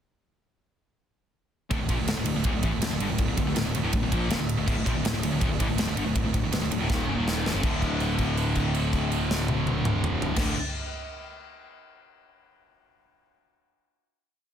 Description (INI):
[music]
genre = heavy metal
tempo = 162 BPM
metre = 4/4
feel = straight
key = unclear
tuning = A4 = 440 Hz
[part]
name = fuzz guitar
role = riff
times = 1.7-10.5 s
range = D2 to Bb3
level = -33 LUFS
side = equal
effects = distortion
[part]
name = high-gain distorted guitar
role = riff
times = 1.7-10.5 s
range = D2 to Bb3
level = -31 LUFS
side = left 9 dB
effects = distortion
[part]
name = scooped high-gain guitar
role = riff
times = 1.7-10.6 s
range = D2 to Bb3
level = -31 LUFS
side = right 9 dB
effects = distortion
[part]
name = fuzz picked electric bass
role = bass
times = 1.7-10.5 s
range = D1 to Bb1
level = -31 LUFS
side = equal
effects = overdrive
[part]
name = big rock drum kit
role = drums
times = 1.7-10.5 s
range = crash cymbal, kick drum, ride cymbal, snare drum, toms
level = -29 LUFS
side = equal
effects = none
[sound]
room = small room ambience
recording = dense, heavily limited modern master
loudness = -24 LUFS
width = side -9 dB against mid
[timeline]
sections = 1.7-7.6 riff; 7.6-10.6 final chord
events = drum fill 6.9-7.6; held note 7.6-10.4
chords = 1.7 D5